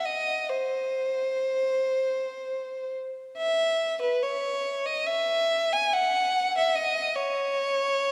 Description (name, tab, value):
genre	classical, free, expressive piece for unaccompanied violin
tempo	69-76 BPM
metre	4/4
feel	rubato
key	unclear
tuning	A4 = 440 Hz
part	rich violin	solo	0.0-8.1 s	B4 to G#5	-27 LUFS	equal	none
room	wet church reverb, RT60 3.2 s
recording	none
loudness	-27 LUFS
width	mono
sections	0.0-8.1 A section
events	none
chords	none